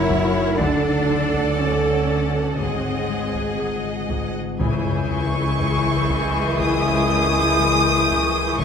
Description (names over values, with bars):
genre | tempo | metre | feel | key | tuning
cinematic, suspense film score | 60 BPM | 4/4 | straight | C# minor from 4.6 s | A4 = 440 Hz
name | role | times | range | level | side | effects
warm symphonic violin section | melody | 0.0-8.6 s | F#5 to D#6 | -25 LUFS | equal | none
clear studio violin section | second line | 0.0-8.6 s | G#4 to G#5 | -29 LUFS | left 1 dB | none
rich symphonic viola section | accompaniment | 0.0-8.6 s | E3 to A#4 | -26 LUFS | right 2 dB | none
concert harp | riff | 0.0-8.6 s | F#2 to D4 | -27 LUFS | left 8 dB | none
warm symphonic cello section | bass | 0.0-8.6 s | C#2 to E4 | -27 LUFS | right 1 dB | none
warm symphonic double bass section | bass | 0.0-8.6 s | F#1 to D2 | -28 LUFS | right 3 dB | none
metallic inharmonic drone | drone | 0.0-8.6 s | F#1 to D2 | -29 LUFS | left 2 dB | chorus, built-in reverb
taiko ensemble | drums | 0.1-8.6 s | none | -30 LUFS | equal | none
warm French horn section | sustained chords | 4.6-8.6 s | G#3 to E4 | -25 LUFS | left 4 dB | none
sub drop | sound effects | 4.6-8.6 s | none | -33 LUFS | equal | none
warm symphonic violin section | texture | 4.6-8.6 s | C#6 to G6 | -32 LUFS | left 2 dB | none
room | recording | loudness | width
moderate scoring stage reverb, RT60 1.6 s | none | -18 LUFS | side -7 dB against mid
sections
0.0-4.6 A section; 4.6-8.6 B section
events
impact 4.6-8.6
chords
0.0 F#; 0.6 D; 2.6 G#7; 4.6 C#m